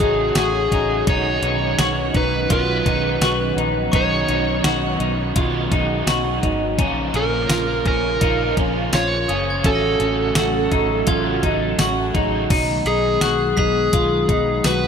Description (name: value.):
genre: dream pop.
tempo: 84 BPM.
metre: 4/4.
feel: straight.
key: B lydian.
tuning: A4 = 440 Hz.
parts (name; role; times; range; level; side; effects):
overdriven slide guitar; melody; 0.0-14.9 s; G#4 to C#5; -22 LUFS; equal; ping-pong delay.
overdriven electric guitar; accompaniment; 0.0-12.5 s; A#2 to G#4; -27 LUFS; right 4 dB; harmonic tremolo, ensemble chorus.
phased analog pad; sustained chords; 0.0-14.9 s; C#3 to E#4; -26 LUFS; right 1 dB; phaser, chorus.
semi-hollow electric guitar; arpeggios; 0.0-14.9 s; C#4 to F#4; -23 LUFS; left 1 dB; lush chorus, ping-pong delay.
vintage muted fingered electric bass; bass; 0.0-14.9 s; F#1 to B1; -26 LUFS; equal; none.
detuned 8-bit digital drum machine; drums; 0.0-14.8 s; crash cymbal, hi-hat, kick drum, snare drum, tambourine; -22 LUFS; equal; overdrive.
glockenspiel with hard plastic mallets; texture; 3.9-14.5 s; A#5 to B6; -34 LUFS; left 2 dB; ping-pong delay.
room: moderate lush hall reverb, RT60 3.0 s.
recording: bright 1980s-style digital production.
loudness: -17 LUFS.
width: side -7 dB against mid.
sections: 0.0-12.5 A section; 12.5-14.9 A section.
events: none.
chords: 0.0 F#madd9/A; 1.1 B6; 6.8 A#m; 9.6 F#madd9/A; 12.5 B6.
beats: 0.36 | 1.07 1.79 2.50 3.21 | 3.93 4.64 5.36 6.07 | 6.79 7.50 8.21 8.93 | 9.64 10.36 11.07 11.79 | 12.50 13.21 13.93 14.64.